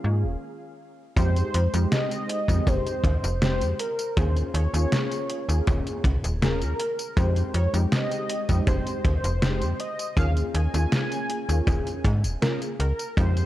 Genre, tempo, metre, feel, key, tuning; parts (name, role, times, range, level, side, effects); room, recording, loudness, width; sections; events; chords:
vaporwave; 80 BPM; 4/4; straight; F minor; A4 = 438 Hz
warm velvety synth lead; melody; 0.0-13.5 s; Bb4 to Ab5; -31 LUFS; equal; chorus, tape echo
warbly lo-fi synth keys; accompaniment; 0.0-13.5 s; Ab3 to Ab4; -32 LUFS; equal; ensemble chorus
slap-like FM bass; bass; 0.0-13.4 s; Eb1 to Ab2; -23 LUFS; equal
detuned 8-bit digital drum machine; drums; 1.2-13.5 s; hi-hat, snare drum, tambourine; -28 LUFS; equal; overdrive
kick drum; drums; 1.2-13.3 s; -25 LUFS; equal
digital ambience; cassette tape; -22 LUFS; side -14 dB against mid
0.0-1.2 A section; 1.2-13.5 B section
stop 0.4-1.2
0.0 Eb9sus4; 1.2 Fm9; 4.2 Eb9sus4; 7.2 Fm9; 10.2 Eb9sus4